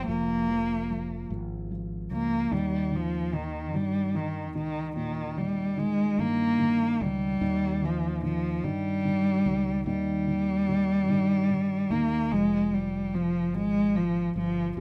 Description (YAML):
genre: pop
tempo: 49 BPM (dotted quarters)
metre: 6/8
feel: straight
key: unclear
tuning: A4 = 438 Hz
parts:
  - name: warm cello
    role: melody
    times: 0.0-14.8 s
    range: Eb3 to Bb3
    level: -29 LUFS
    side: equal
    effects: none
  - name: felt-muted upright piano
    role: accompaniment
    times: 0.0-14.8 s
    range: Bb2 to F3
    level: -36 LUFS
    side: equal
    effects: none
  - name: fretless electric bass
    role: bass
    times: 0.0-14.8 s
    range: F1 to G2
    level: -38 LUFS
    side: equal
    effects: none
room: light reverb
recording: rough home demo mix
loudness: -28 LUFS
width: mono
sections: 0.0-14.8 A section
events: none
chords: 0.0 Bb5/F; 2.5 Eb; 12.3 Fm